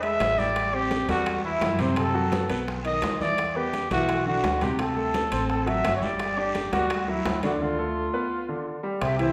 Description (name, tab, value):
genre	Afro-Cuban jazz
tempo	170 BPM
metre	4/4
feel	straight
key	G major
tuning	A4 = 440 Hz
part	growling trumpet	melody	0.0-9.3 s	E4 to E5	-29 LUFS	equal	none
part	warm grand piano	accompaniment	0.0-9.3 s	C3 to D5	-31 LUFS	equal	none
part	upright bass	bass	0.0-9.3 s	G1 to F#2	-35 LUFS	equal	none
part	bongos	percussion	0.0-9.2 s	none	-38 LUFS	equal	none
part	congas	percussion	0.0-9.3 s	none	-38 LUFS	equal	none
part	timbales	percussion	0.0-9.3 s	none	-40 LUFS	equal	none
part	guiro	percussion	0.2-9.3 s	none	-46 LUFS	equal	none
part	breathy mellow silver concert flute	second line	9.0-9.3 s	C5 to E5	-31 LUFS	equal	none
room	wet recital hall reverb, RT60 1.3 s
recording	recorded in a church or concert hall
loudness	-26 LUFS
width	mono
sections	0.0-9.0 A section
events	break 7.6-9.0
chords	0.0 E7; 0.6 Am7; 2.0 F#dim; 2.7 B; 3.4 Em7; 4.8 D7; 6.2 G5; 7.6 Dm; 8.3 G7